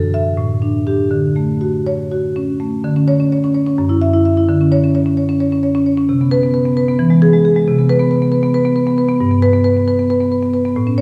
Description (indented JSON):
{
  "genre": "classical, contemporary piece for solo marimba",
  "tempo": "238-280 BPM (eighths)",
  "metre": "7/8",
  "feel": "rubato",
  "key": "D lydian",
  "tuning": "A4 = 442 Hz",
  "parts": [
    { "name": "marimba with medium mallets", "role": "solo", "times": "0.0-11.0 s", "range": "F#2 to E5", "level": "-15 LUFS", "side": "equal", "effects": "none" }
  ],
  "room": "wet recital hall reverb, RT60 1.5 s",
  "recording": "heard from further back in the room",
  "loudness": "-15 LUFS",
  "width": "mono",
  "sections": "0.0-2.8 A section; 2.8-11.0 B section",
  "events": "none",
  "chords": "0.4 A7sus4; 1.1 Dmaj7; 2.8 N.C.; 3.8 Esus2/F#; 4.5 N.C.; 7.0 E; 7.7 N.C.; 9.2 G"
}